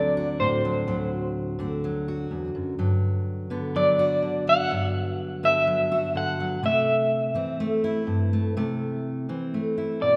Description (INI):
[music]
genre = acoustic folk-pop ballad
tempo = 62 BPM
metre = 4/4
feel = straight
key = unclear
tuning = A4 = 439 Hz
[part]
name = electric guitar through a small old amp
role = melody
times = 0.0-10.2 s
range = C5 to F#5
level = -25 LUFS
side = equal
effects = tremolo
[part]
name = fingerpicked steel-string acoustic guitar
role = accompaniment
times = 0.0-10.2 s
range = D2 to F#4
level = -28 LUFS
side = equal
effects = none
[sound]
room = wet scoring stage reverb, RT60 1.9 s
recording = none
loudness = -25 LUFS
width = mono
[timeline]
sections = 0.0-10.2 A section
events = none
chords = 0.0 D7; 2.8 Gmaj7; 6.6 C6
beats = 0.86 1.82 | 2.78 3.74 4.70 5.66 | 6.62 7.58 8.55 9.52